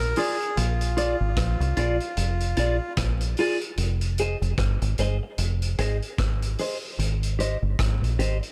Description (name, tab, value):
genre	roots reggae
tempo	75 BPM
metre	4/4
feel	swing 58% on 16ths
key	Bb mixolydian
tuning	A4 = 439 Hz
part	melodica	melody	0.0-2.9 s	F4 to Bb4	-33 LUFS	equal	dub echo
part	deep dub fingered electric bass	bass	0.0-8.4 s	F1 to C2	-27 LUFS	equal	none
part	vintage drum kit	drums	0.0-8.5 s	hi-hat, kick drum, rim click	-33 LUFS	equal	none
part	clean electric guitar	accompaniment	0.2-8.5 s	F4 to Eb5	-30 LUFS	equal	phaser, dub echo
room	small room ambience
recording	none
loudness	-25 LUFS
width	mono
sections	0.0-8.5 A section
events	none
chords	0.0 Bb7; 3.8 Fm7; 7.0 Abmaj7